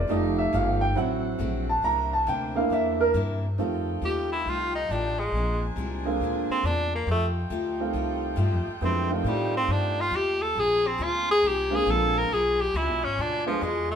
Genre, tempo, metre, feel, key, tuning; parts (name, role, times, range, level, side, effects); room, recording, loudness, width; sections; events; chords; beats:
jazz, big band swing; 138 BPM; 4/4; swing 65% on 8ths; F major; A4 = 440 Hz
clear upright piano; accompaniment; 0.0-13.6 s; D3 to Bb5; -26 LUFS; right 2 dB
edgy saxophone section; sustained chords; 0.0-14.0 s; D4 to Ab5; -38 LUFS; left 1 dB
upright bass; bass; 0.0-14.0 s; F1 to A2; -30 LUFS; left 1 dB
picked steel-string acoustic guitar; accompaniment; 0.1-13.9 s; Bb2 to G4; -35 LUFS; left 4 dB
edgy tenor saxophone; melody; 4.1-14.0 s; Eb3 to Bb4; -25 LUFS; equal
wet stone room reverb, RT60 0.9 s; band playing live in one room; -23 LUFS; side -8 dB against mid
0.0-3.6 A section; 3.6-14.0 A section
upright piano solo 0.0-3.6; tenor saxophone solo 3.6-14.0
0.1 F9; 1.0 D7; 1.8 C9; 3.6 F9; 5.3 Bb9; 7.1 F9; 10.6 Bb9; 12.3 Bdim7
| 0.09 0.53 0.96 1.40 | 1.84 2.27 2.71 3.15 | 3.58 4.02 4.46 4.89 | 5.33 5.76 6.20 6.64 | 7.07 7.51 7.94 8.38 | 8.82 9.25 9.69 10.12 | 10.56 11.00 11.43 11.87 | 12.30 12.74 13.18 13.61